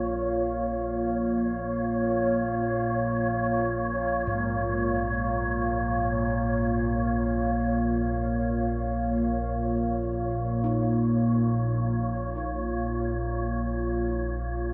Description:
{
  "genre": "dark ambient drone",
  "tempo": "free time",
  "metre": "none",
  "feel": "none",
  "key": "Bb minor",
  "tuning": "A4 = 441 Hz",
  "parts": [
    { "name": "deep dark ambient pad", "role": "sustained chords", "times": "0.0-14.7 s", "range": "Bb3 to F5", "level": "-30 LUFS", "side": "equal", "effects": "chorus, built-in reverb" },
    { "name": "gamelan-type bossed gongs", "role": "arpeggios", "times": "0.0-14.7 s", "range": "Ab2 to Eb4", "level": "-42 LUFS", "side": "equal", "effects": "none" },
    { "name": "analog drone", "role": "drone", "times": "0.0-14.7 s", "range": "Bb1 to Bb2", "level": "-32 LUFS", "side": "equal", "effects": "chorus" },
    { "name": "wind-like tuned noise texture", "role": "texture", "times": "0.0-14.7 s", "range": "Db5", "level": "-36 LUFS", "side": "equal", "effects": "built-in reverb" }
  ],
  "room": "wet huge ambient reverb, RT60 7.3 s",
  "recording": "nothing above 7.6 kHz",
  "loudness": "-27 LUFS",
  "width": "mono",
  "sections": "0.0-14.7 A section",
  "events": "fade-in on synth drone 0.0-14.7; fade-out on synth texture 0.0-14.7",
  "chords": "0.0 Bbm"
}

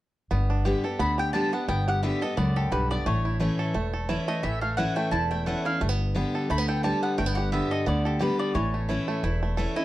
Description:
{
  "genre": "bluegrass",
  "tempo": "175 BPM",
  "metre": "4/4",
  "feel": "swing 55% on 8ths",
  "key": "unclear",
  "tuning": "A4 = 440 Hz",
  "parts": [
    { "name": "picked steel-string acoustic guitar", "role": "accompaniment", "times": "0.3-9.8 s", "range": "E2 to G4", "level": "-29 LUFS", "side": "left 1 dB", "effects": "none" },
    { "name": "bluegrass banjo", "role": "arpeggios", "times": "0.3-9.8 s", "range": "E3 to A4", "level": "-32 LUFS", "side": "right 3 dB", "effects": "none" },
    { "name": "upright bass", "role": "bass", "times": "0.3-9.6 s", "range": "E1 to D2", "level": "-28 LUFS", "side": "equal", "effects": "none" },
    { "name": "mandolin", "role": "melody", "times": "1.0-9.8 s", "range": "G4 to B5", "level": "-30 LUFS", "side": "equal", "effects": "none" }
  ],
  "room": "moderate studio reverb, RT60 0.8 s",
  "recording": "dark, warm production",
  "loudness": "-24 LUFS",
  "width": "side -15 dB against mid",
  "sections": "0.3-9.8 A section",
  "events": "none",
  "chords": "0.3 G; 3.1 A; 5.8 G; 8.6 A"
}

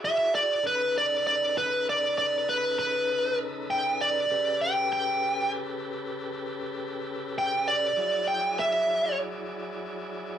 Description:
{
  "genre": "blues",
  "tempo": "66 BPM (dotted quarters)",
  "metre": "12/8",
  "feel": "straight",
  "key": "unclear",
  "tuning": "A4 = 440 Hz",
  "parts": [
    { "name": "smooth overdriven lead guitar", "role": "melody", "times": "0.0-9.2 s", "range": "B4 to G5", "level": "-24 LUFS", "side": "right 1 dB", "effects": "cassette tape" },
    { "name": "bright tonewheel organ", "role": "sustained chords", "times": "0.0-10.4 s", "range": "C#3 to D5", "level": "-34 LUFS", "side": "left 1 dB", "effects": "slow rotary speaker, overdrive" }
  ],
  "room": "light reverb",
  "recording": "home recording on cassette, small room ambience",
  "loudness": "-25 LUFS",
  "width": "side -9 dB against mid",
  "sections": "0.0-10.4 A section",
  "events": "lead electric guitar solo 0.0-10.4",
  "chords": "0.0 E9; 0.6 B9; 4.3 A9; 8.0 E9"
}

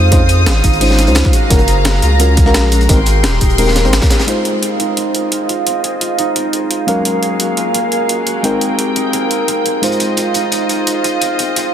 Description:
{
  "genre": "liquid drum and bass",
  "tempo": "173 BPM",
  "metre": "4/4",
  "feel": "straight",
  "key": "unclear",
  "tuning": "A4 = 440 Hz",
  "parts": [
    { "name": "mellow FM electric piano", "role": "accompaniment", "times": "0.0-11.7 s", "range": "Gb3 to G5", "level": "-18 LUFS", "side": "left 2 dB", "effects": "chorus, low-pass filter, tape echo" },
    { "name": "clear studio string section", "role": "sustained chords", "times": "0.0-11.7 s", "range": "Gb3 to Eb6", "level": "-21 LUFS", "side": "left 2 dB", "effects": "sidechain pumping, low-pass filter" },
    { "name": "concert harp", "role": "arpeggios", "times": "0.0-11.7 s", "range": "Bb3 to Bb4", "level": "-18 LUFS", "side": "right 3 dB", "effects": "low-pass filter, tape echo" },
    { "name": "saturated sub bass", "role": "bass", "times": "0.0-4.0 s", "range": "Eb1 to F2", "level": "-12 LUFS", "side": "equal", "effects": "none" },
    { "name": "breakbeat sampler-style drum kit", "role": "drums", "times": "0.1-11.6 s", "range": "hi-hat, snare drum", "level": "-19 LUFS", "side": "equal", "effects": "none" },
    { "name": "crunchy breakbeat drum kit", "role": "drums", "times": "0.1-4.3, 9.8-11.7 s", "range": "hi-hat, snare drum", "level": "-22 LUFS", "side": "equal", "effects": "high-pass filter on hats, high-pass filter on snare, high-pass filter on room" },
    { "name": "electronic kick drum", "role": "drums", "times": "0.1-4.1 s", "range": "none", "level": "-13 LUFS", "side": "equal", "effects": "none" }
  ],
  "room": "light reverb",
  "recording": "dense, heavily limited modern master",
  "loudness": "-11 LUFS",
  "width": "side -9 dB against mid",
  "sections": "0.0-4.3 A section; 4.3-11.7 B section",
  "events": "drop 0.0-4.3; band accent 3.9; filter sweep on string section 4.3-11.7; filter sweep on harp 4.3-11.7",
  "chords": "0.0 Dbmaj9; 1.3 Gbmaj9; 2.9 Abmaj9; 4.3 Ab6; 6.9 Gbmaj9; 8.4 Abmaj9; 9.8 Ab6"
}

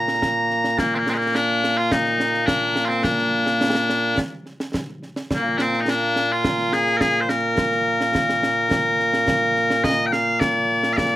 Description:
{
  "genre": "scottish traditional, Scottish pipe music",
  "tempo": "106 BPM",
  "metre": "4/4",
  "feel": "straight",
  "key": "Bb major",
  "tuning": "A4 = 436 Hz",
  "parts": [
    { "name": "loud bright bagpipes", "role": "melody", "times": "0.0-11.2 s", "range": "Bb2 to Bb5", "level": "-18 LUFS", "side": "equal", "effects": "slapback echo" },
    { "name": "concert snare drum and concert bass drum", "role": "drums", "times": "0.1-11.2 s", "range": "none", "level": "-26 LUFS", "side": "right 1 dB", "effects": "none" }
  ],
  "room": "little or no reverb",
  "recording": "recorded outdoors, with no room sound",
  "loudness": "-18 LUFS",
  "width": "side -14 dB against mid",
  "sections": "0.8-9.8 A section; 9.8-11.2 B section",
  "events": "none",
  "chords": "none"
}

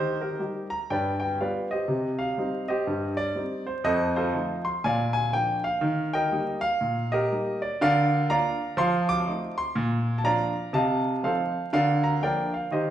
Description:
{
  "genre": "jazz, stride piano",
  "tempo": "122 BPM",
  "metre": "4/4",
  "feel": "swing 61% on 8ths",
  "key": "Eb major, Bb major from 7.8 s",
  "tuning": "A4 = 440 Hz",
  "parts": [
    { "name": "warm baby grand piano", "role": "solo", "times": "0.0-12.9 s", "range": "F2 to D6", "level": "-24 LUFS", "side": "equal", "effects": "none" }
  ],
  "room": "wet large studio reverb, RT60 1.3 s",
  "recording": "band playing live in one room, vinyl crackle, nothing above 10.5 kHz",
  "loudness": "-24 LUFS",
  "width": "side -11 dB against mid",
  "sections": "0.0-12.9 A section",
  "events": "none",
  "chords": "0.0 Eb; 0.9 G7; 1.9 Cm; 3.8 F7; 4.8 Bb; 5.8 Eb; 7.8 Bb/D; 8.8 F7; 9.8 Bb; 10.7 F7/C; 11.7 Bb/D"
}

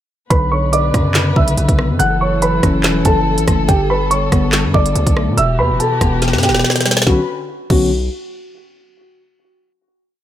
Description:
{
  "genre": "hip hop, drill",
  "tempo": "142 BPM",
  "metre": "4/4",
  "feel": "half-time",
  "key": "B minor",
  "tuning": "A4 = 440 Hz",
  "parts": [
    { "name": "dark concert grand piano", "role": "melody", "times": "0.3-7.9 s", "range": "F#4 to F#6", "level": "-18 LUFS", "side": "right 1 dB", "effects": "low-pass filter, digital delay" },
    { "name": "mellow tine electric piano", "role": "accompaniment", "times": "0.3-7.9 s", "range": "B2 to C#4", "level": "-19 LUFS", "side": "left 2 dB", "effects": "analog chorus, low-pass filter" },
    { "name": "dark chamber string section", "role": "sustained chords", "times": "0.3-7.3 s", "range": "B2 to B4", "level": "-24 LUFS", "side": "left 2 dB", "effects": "none" },
    { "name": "hard-hitting 808-style bass", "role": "bass", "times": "0.3-8.1 s", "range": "E1 to B2", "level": "-19 LUFS", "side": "equal", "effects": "none" },
    { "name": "drill drum kit", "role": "drums", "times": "0.3-7.8 s", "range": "crash cymbal, handclaps, hi-hat, kick drum, rim click, snare drum", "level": "-16 LUFS", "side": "equal", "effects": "none" }
  ],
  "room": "light reverb",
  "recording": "none",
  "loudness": "-12 LUFS",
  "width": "side -12 dB against mid",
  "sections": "0.3-7.1 hook; 7.1-8.8 final chord",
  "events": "drum fill 6.2-7.1",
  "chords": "0.3 Bmadd9; 2.0 F#m7; 3.7 Gadd9; 5.4 Em; 7.1 Bmadd9"
}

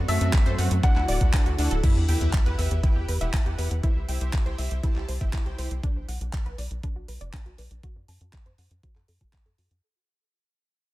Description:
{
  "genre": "progressive house",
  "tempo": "120 BPM",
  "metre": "4/4",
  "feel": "straight",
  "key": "E minor",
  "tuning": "A4 = 438 Hz",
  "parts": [
    { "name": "airy breathy pad", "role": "sustained chords", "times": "0.0-1.8 s", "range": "D3 to F#4", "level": "-40 LUFS", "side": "left 1 dB", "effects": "none" },
    { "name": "tight sequencer bass", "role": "bass", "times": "0.0-9.8 s", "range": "D1 to F#2", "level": "-27 LUFS", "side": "equal", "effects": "tube saturation, sidechain pumping" },
    { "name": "bright baby grand piano", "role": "melody", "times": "0.1-1.7 s", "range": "E5 to F#5", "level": "-32 LUFS", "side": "left 2 dB", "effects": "sidechain pumping, digital delay" },
    { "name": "glassy wavetable pluck", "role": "second line", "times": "0.1-1.7 s", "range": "none", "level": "barely audible", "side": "none", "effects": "none" },
    { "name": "wide unison pluck", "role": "arpeggios", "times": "0.1-9.6 s", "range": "D4 to A5", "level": "-35 LUFS", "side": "equal", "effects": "sidechain pumping, digital delay" },
    { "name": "soft supersaw", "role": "stabs", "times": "0.1-5.7 s", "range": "F#3 to A5", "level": "-34 LUFS", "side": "right 2 dB", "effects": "wide subtle chorus, sidechain pumping, digital delay" },
    { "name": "pop drum kit", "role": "drums", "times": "0.1-9.8 s", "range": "crash cymbal, handclaps, hi-hat", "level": "-34 LUFS", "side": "right 1 dB", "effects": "overdrive, sidechain pumping on hats, sidechain pumping on cymbals" },
    { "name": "electronic kick drum", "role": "drums", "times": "0.3-9.4 s", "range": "none", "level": "-23 LUFS", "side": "equal", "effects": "overdrive" },
    { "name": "sub drop", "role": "sound effects", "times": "1.9-3.8 s", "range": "none", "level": "-30 LUFS", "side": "equal", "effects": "none" }
  ],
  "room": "digital ambience",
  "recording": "none",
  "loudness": "-22 LUFS",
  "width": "side -17 dB against mid",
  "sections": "0.0-1.8 A section; 1.8-9.8 B section",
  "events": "drop 0.0-1.8; fade-out 1.8-9.8; impact 1.8-3.8; filter sweep on analog synth bass 1.8-9.8; filter sweep on synth pluck 1.8-9.8",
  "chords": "0.0 F#dim; 0.8 Dadd9; 1.8 Em; 3.8 C; 5.8 Bm; 7.8 F#m"
}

